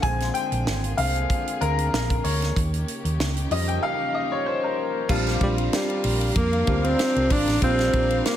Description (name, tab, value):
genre	polished 1980s jazz-funk pop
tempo	95 BPM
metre	4/4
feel	swing 54% on 16ths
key	Bb major from 5.1 s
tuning	A4 = 440 Hz
part	clear baby grand piano	accompaniment	0.0-8.4 s	D3 to Ab5	-26 LUFS	left 2 dB	analog chorus
part	warm studio string section	sustained chords	0.0-8.4 s	Db3 to F5	-33 LUFS	right 1 dB	none
part	hollow-body short-scale fingered electric bass	bass	0.0-8.2 s	Ab1 to F2	-25 LUFS	equal	none
part	tight funk drum kit	drums	0.0-8.4 s	crash cymbal, hi-hat, kick drum, ride cymbal, snare drum	-27 LUFS	right 1 dB	none
part	breathy alto saxophone	melody	5.4-8.4 s	G3 to D4	-23 LUFS	right 1 dB	none
room	light reverb, studio reverb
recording	none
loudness	-21 LUFS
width	side -11 dB against mid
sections	0.0-5.1 A section; 5.1-8.4 B section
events	grand piano solo 0.0-5.1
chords	0.0 Bb7; 2.6 Eb7; 5.1 Bb6